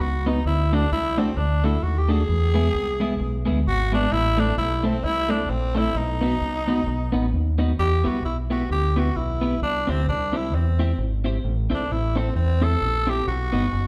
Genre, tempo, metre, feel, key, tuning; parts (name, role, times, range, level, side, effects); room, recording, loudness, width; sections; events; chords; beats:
ska; 131 BPM; 4/4; swing 60% on 8ths; A4 = 440 Hz
growling tenor saxophone; melody; 0.0-13.9 s; C4 to A4; -28 LUFS; equal
deep dub fingered electric bass; bass; 0.0-13.9 s; F#1 to E2; -26 LUFS; equal
twelve-string electric guitar; accompaniment; 0.3-13.7 s; G#3 to C5; -29 LUFS; equal
wet large studio reverb, RT60 1.2 s; band playing live in one room; -23 LUFS; mono
0.0-7.8 A section; 7.8-13.9 B section
0.5 D; 2.3 E; 4.1 Am; 6.0 B; 7.8 Em; 9.6 C; 11.4 Am; 13.3 B
0.00 | 0.46 0.91 1.37 1.83 | 2.29 2.75 3.21 3.66 | 4.12 4.58 5.04 5.49 | 5.95 6.41 6.87 7.32 | 7.78 8.24 8.70 9.15 | 9.61 10.07 10.53 10.98 | 11.44 11.90 12.35 12.81 | 13.27 13.72